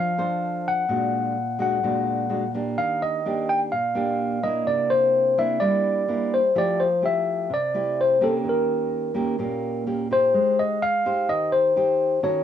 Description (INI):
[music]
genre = bossa nova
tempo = 127 BPM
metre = 4/4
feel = straight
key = unclear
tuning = A4 = 442 Hz
[part]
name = mellow tine electric piano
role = melody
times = 0.0-12.4 s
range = A4 to G5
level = -21 LUFS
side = left 1 dB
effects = cassette tape
[part]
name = nylon-string guitar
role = accompaniment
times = 0.0-12.4 s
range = Bb2 to C5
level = -26 LUFS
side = equal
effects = cassette tape
[sound]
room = light reverb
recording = home recording on cassette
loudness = -20 LUFS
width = side -9 dB against mid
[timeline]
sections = 0.0-10.3 A section; 10.3-12.4 B section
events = none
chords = 0.0 Bbmaj9 (rootless); 0.9 Bbaug7; 2.8 Ebmaj7; 4.7 C9; 6.6 Fmaj9; 8.4 Eb7; 10.3 Abmaj7